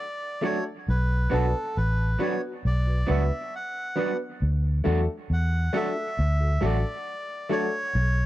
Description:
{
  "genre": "reggae",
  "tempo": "68 BPM",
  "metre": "4/4",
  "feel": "straight",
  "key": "unclear",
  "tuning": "A4 = 439 Hz",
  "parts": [
    { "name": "melodica", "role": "melody", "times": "0.0-8.3 s", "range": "A4 to F#5", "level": "-31 LUFS", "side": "equal", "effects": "tape echo" },
    { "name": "electric guitar at the edge of break-up", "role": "accompaniment", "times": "0.4-7.6 s", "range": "F#3 to F#4", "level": "-33 LUFS", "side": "right 6 dB", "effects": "tape echo" },
    { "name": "warm upright piano", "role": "stabs", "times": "0.4-7.7 s", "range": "A3 to B4", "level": "-29 LUFS", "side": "left 2 dB", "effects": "none" },
    { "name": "vintage muted fingered electric bass", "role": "bass", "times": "0.9-8.3 s", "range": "A1 to E2", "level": "-23 LUFS", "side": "equal", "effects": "none" }
  ],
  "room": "small room ambience",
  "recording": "dry, close 1970s-style studio recording",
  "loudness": "-24 LUFS",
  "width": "side -15 dB against mid",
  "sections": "0.0-8.3 A section",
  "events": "none",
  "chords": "0.0 D; 0.9 Bm; 4.4 D"
}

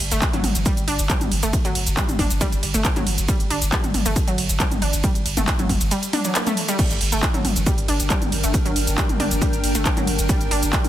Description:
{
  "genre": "driving peak-time techno",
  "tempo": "137 BPM",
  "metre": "4/4",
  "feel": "straight",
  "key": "G harmonic minor",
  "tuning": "A4 = 440 Hz",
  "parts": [
    { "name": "saturated sub bass", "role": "bass", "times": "0.0-10.9 s", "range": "G1", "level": "-25 LUFS", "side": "equal", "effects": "overdrive, sidechain pumping, low-pass filter" },
    { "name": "techno drum kit", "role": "drums", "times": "0.0-10.9 s", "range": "crash cymbal, handclaps, hi-hat, ride cymbal, shaker, toms", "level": "-23 LUFS", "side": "equal", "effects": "sidechain pumping on hats, sidechain pumping on toms, sidechain pumping on perc, sidechain pumping on cymbals" },
    { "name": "wide unison pluck", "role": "riff", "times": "0.1-10.8 s", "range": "F#3 to D4", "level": "-26 LUFS", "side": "equal", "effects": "sidechain pumping, digital delay" },
    { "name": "electronic kick drum", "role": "drums", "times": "0.2-10.8 s", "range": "none", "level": "-22 LUFS", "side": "equal", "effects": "none" },
    { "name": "granular cloud pad", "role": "texture", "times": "7.6-10.9 s", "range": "D4 to G5", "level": "-27 LUFS", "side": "equal", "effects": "built-in reverb, sidechain pumping" }
  ],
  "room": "light reverb",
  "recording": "dense, heavily limited modern master",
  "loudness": "-18 LUFS",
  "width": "side -12 dB against mid",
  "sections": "0.0-6.8 A section; 6.8-10.9 A section",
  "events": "drop 0.0-6.8, 6.8-10.9",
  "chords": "0.0 N.C.; 6.8 Gm"
}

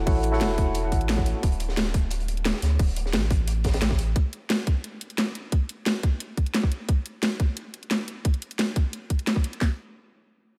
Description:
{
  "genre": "liquid drum and bass",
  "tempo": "176 BPM",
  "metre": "4/4",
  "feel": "straight",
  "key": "unclear",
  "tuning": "A4 = 440 Hz",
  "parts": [
    { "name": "tine electric piano", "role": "accompaniment", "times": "0.0-1.5 s", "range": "E4 to F#5", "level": "-31 LUFS", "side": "equal", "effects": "analog delay" },
    { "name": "warm sub bass", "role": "bass", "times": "0.0-4.1 s", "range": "D1 to D2", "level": "-28 LUFS", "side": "equal", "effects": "none" },
    { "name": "crunchy breakbeat drum kit", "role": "drums", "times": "0.1-4.1 s", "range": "hi-hat, snare drum", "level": "-38 LUFS", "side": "equal", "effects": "high-pass filter on hats, high-pass filter on snare, high-pass filter on room" },
    { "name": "drum and bass drum kit", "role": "drums", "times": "0.1-9.7 s", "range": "handclaps, kick drum, snare drum", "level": "-25 LUFS", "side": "equal", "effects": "overdrive" },
    { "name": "drum and bass drum kit", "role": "drums", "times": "0.1-9.6 s", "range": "hi-hat, snare drum", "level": "-31 LUFS", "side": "equal", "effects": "overdrive" }
  ],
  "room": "light reverb",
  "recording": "none",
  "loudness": "-26 LUFS",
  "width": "mono",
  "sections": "0.0-9.6 A section",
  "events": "none",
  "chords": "0.0 A6; 1.4 D5; 4.2 N.C."
}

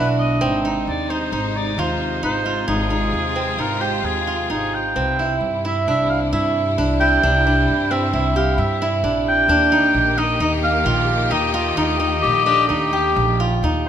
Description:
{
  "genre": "contemporary instrumental, chamber music in an uneven meter",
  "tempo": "132 BPM",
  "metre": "5/4",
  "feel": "straight",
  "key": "unclear",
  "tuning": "A4 = 440 Hz",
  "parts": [
    { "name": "warm oboe", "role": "melody", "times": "0.0-13.9 s", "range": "Ab4 to G5", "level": "-21 LUFS", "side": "equal", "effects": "none" },
    { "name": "rich studio string section", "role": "sustained chords", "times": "0.0-13.9 s", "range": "C3 to G4", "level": "-26 LUFS", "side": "left 3 dB", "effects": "none" },
    { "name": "steel-string zither", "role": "arpeggios", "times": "0.0-13.9 s", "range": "B3 to G4", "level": "-21 LUFS", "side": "right 2 dB", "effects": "none" },
    { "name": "upright bass", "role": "bass", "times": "0.0-13.9 s", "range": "Ab1 to G2", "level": "-23 LUFS", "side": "equal", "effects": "none" },
    { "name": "bright clarinet", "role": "second line", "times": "12.2-13.6 s", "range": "G4", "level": "-18 LUFS", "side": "left 6 dB", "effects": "none" }
  ],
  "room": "moderate recital hall reverb, RT60 1.5 s",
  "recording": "none",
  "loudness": "-16 LUFS",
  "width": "side -9 dB against mid",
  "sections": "0.0-13.9 A section",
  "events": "none",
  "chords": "0.4 Ab; 5.0 C; 9.5 Eb"
}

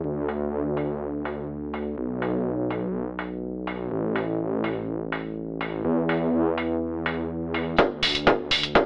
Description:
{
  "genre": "progressive house",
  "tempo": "124 BPM",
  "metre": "4/4",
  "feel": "straight",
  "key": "unclear",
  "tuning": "A4 = 440 Hz",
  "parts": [
    { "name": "dark detuned saw bass", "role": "bass", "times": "0.0-8.9 s", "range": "A1 to E2", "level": "-28 LUFS", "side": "equal", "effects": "sidechain pumping" },
    { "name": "electronic hi-hat", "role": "drums", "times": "0.3-8.9 s", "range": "none", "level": "-27 LUFS", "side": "equal", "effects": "high-pass filter on hats, low-pass filter on hats" },
    { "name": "electronic kick drum", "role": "drums", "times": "7.8-8.9 s", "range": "none", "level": "-18 LUFS", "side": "equal", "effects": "high-pass filter on kick" }
  ],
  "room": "digital ambience",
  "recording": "telephone sound",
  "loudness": "-24 LUFS",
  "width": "side -32 dB against mid",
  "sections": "0.0-7.8 A section; 7.8-8.9 B section",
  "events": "build-up 7.8-8.9; filter sweep 7.8-8.9",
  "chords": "none"
}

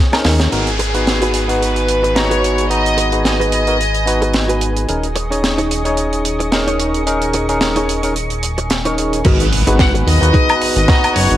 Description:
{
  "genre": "nu-disco, nu disco",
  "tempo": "110 BPM",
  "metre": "4/4",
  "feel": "swing 55% on 16ths",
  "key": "G# minor",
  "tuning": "A4 = 443 Hz",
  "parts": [
    { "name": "lush unison pad", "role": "sustained chords", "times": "0.0-11.4 s", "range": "G#4 to C#6", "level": "-26 LUFS", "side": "equal", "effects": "chorus, sidechain pumping" },
    { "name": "barky tine electric piano", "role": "accompaniment", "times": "0.1-11.4 s", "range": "B3 to A#5", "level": "-19 LUFS", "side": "equal", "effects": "sidechain pumping, low-pass filter, analog delay" },
    { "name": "tight funk drum kit", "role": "drums", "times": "0.1-11.4 s", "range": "crash cymbal, hi-hat, snare drum, woodblock", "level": "-20 LUFS", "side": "right 1 dB", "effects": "none" },
    { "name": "chorused synth bass", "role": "bass", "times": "0.2-11.4 s", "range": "D#1 to D#2", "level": "-19 LUFS", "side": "equal", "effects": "sidechain pumping" },
    { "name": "rich studio violin section", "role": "melody", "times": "0.5-4.6, 9.8-11.4 s", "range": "G#4 to F#5", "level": "-19 LUFS", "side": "left 1 dB", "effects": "analog delay" },
    { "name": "downlifter and impact", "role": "sound effects", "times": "0.5-4.9, 9.3-11.4 s", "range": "none", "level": "-26 LUFS", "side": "equal", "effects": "none" },
    { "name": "direct-recorded clean electric guitar", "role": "riff", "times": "0.8-10.9 s", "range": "D#4 to C#5", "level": "-22 LUFS", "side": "right 1 dB", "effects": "ensemble chorus, vintage 12-bit sampler grit, low-pass filter" },
    { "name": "electronic kick drum", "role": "drums", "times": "9.3-11.0 s", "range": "none", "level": "-13 LUFS", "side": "equal", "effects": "none" }
  ],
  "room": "light reverb, studio ambience",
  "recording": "dry, gritty hardware recording",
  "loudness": "-13 LUFS",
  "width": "side -13 dB against mid",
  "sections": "0.5-9.3 A section; 9.3-11.4 B section",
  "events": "drum fill 0.0-0.5; band accent 0.4; drop 9.3-11.4; impact 9.3-11.4",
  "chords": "0.0 D#7sus4; 0.5 G#m7; 4.9 D#7sus4; 9.3 G#m7"
}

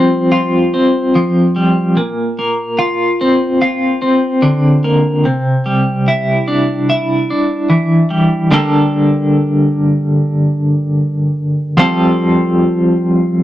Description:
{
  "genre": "rock",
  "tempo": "73 BPM",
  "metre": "4/4",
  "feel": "straight",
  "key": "G dorian",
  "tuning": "A4 = 440 Hz",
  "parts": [
    { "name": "twelve-string electric guitar", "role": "solo", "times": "0.0-13.4 s", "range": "G2 to A4", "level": "-11 LUFS", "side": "equal", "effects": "tremolo" }
  ],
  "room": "moderate studio reverb, RT60 0.6 s",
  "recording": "rough rehearsal-room recording, warm saturation",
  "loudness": "-11 LUFS",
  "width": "side -13 dB against mid",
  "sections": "0.0-8.5 A section; 8.5-13.4 B section",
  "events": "none",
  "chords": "0.0 Fsus2; 2.0 Bbadd9; 5.2 Cadd9; 8.5 Gmadd9; 11.8 Fadd9"
}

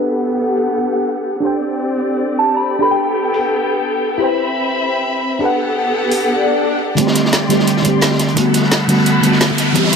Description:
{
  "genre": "liquid drum and bass",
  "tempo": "173 BPM",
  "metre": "4/4",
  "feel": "straight",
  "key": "G major",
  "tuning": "A4 = 441 Hz",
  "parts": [
    { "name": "mellow FM electric piano", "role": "accompaniment", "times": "0.0-10.0 s", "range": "D3 to G5", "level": "-17 LUFS", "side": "right 1 dB", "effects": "chorus, phaser, low-pass filter, tape echo" },
    { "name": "rich chamber string section", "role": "sustained chords", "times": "0.0-10.0 s", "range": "B3 to C6", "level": "-19 LUFS", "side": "left 2 dB", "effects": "sidechain pumping, low-pass filter" },
    { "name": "garage drum kit", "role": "drums", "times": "0.6, 3.3-3.4, 6.1-10.0 s", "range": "hi-hat, snare drum", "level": "-19 LUFS", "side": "right 1 dB", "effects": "overdrive, low-pass filter on hats, low-pass filter on snare" },
    { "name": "soft synth bell", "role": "melody", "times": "2.4-3.3 s", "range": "G5 to B5", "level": "-19 LUFS", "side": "equal", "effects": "chorus, phaser, tape echo" },
    { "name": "swell and riser", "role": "sound effects", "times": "6.4-10.0 s", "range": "none", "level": "-21 LUFS", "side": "left 2 dB", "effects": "none" },
    { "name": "warm sub bass", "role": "bass", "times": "7.0-10.0 s", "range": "none", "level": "barely audible", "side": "none", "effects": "none" },
    { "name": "crunchy breakbeat drum kit", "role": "drums", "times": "7.0-10.0 s", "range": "hi-hat, snare drum", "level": "-22 LUFS", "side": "right 1 dB", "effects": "high-pass filter on hats, high-pass filter on snare, high-pass filter on room" },
    { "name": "electronic kick drum", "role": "drums", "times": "7.0-9.8 s", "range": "none", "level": "-23 LUFS", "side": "right 1 dB", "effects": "overdrive, high-pass filter on kick" }
  ],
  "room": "moderate huge ambient reverb, RT60 4.1 s",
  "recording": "low-pass filter",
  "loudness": "-13 LUFS",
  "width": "side -6 dB against mid",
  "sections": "0.0-7.0 A section; 7.0-10.0 B section",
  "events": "filter sweep on drum 0.0-7.0; filter sweep on string section 0.0-7.0; filter sweep 0.0-7.0; swell 6.4-7.0; build-up 7.0-10.0; riser 7.0-10.0",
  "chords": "0.0 Gmaj9; 1.4 D7sus4; 2.8 Gadd9; 4.2 Cmaj7; 5.4 Gmaj9; 7.0 D7sus4; 8.4 Gmaj9"
}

